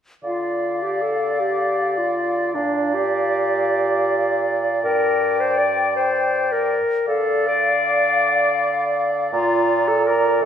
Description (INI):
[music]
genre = classical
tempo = free time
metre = none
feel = none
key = D minor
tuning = A4 = 436 Hz
[part]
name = clear clarinet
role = second line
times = 0.2-10.5 s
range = D4 to D5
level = -21 LUFS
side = left 1 dB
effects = none
[part]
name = hollow concert flute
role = second line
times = 0.2-10.4 s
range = F5 to Bb5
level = -24 LUFS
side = left 4 dB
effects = none
[part]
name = warm oboe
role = second line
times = 0.2-10.4 s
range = D5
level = -26 LUFS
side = right 2 dB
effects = none
[part]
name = warm bassoon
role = accompaniment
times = 0.2-10.5 s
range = G2 to E3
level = -23 LUFS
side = right 3 dB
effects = none
[sound]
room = wet scoring stage reverb, RT60 1.9 s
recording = minimal, uncompressed stereo recording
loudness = -17 LUFS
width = side -8 dB against mid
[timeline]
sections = 0.2-10.5 A section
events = none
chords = 0.2 Dm; 2.5 Bb6; 4.8 Gm; 7.1 Dm; 9.3 Bb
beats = free time